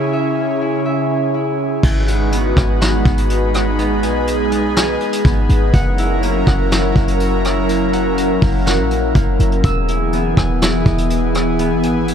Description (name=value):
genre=hip hop, atmospheric cloud-rap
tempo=123 BPM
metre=4/4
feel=half-time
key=G# minor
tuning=A4 = 438 Hz
part: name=airy breathy pad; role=sustained chords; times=0.0-12.1 s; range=C#3 to B4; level=-18 LUFS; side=equal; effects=chorus, sidechain pumping
part: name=concert harp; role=arpeggios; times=0.0-12.1 s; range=A#3 to E6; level=-22 LUFS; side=right 1 dB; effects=tape echo
part: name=clean 808-style bass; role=bass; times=1.8-12.1 s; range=E1 to B1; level=-18 LUFS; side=equal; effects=none
part: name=vintage brush drum kit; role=drums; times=1.8-12.1 s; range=crash cymbal, hi-hat, kick drum, rim click, snare drum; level=-18 LUFS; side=equal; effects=none
room=small room ambience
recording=none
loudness=-14 LUFS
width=side -8 dB against mid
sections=0.0-1.8 A section; 1.8-12.1 B section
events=break 0.0-1.8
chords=0.0 C#m; 1.8 G#m7; 5.7 F#7; 9.6 Emaj7